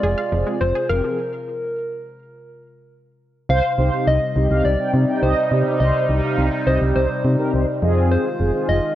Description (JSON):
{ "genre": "synth-pop", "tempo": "104 BPM", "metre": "4/4", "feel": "straight", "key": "C minor", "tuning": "A4 = 440 Hz", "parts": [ { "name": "soft struck synth lead", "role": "melody", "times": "0.0-8.9 s", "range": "Bb4 to F5", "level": "-23 LUFS", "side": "left 1 dB", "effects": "chorus, digital delay" }, { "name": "sweeping resonant pad", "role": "sustained chords", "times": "0.0-8.9 s", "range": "C3 to F4", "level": "-26 LUFS", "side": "right 1 dB", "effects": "chorus, phaser" }, { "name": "wide unison pluck", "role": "arpeggios", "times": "0.0-1.2 s", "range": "F3 to F5", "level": "-29 LUFS", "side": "right 2 dB", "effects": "digital delay" }, { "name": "solid FM bass", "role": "bass", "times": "0.0-8.8 s", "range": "F1 to C3", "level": "-19 LUFS", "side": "equal", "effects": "none" }, { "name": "mellow synth brass", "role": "accompaniment", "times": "0.3-8.8 s", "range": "C4 to Ab4", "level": "-24 LUFS", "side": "equal", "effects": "chorus" }, { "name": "mellow synth brass", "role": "second line", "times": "3.5-7.9 s", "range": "Bb4 to G5", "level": "-26 LUFS", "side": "right 2 dB", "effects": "chorus, digital delay" } ], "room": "moderate scoring stage reverb, RT60 2.0 s", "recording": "worn, warbling old tape, cassette tape, warbly pitch drift", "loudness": "-17 LUFS", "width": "side -13 dB against mid", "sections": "0.0-3.5 A section; 3.5-8.9 B section", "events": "stop 1.2-3.5", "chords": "0.0 Fm; 1.2 N.C.; 3.5 Cm; 7.8 Fm7" }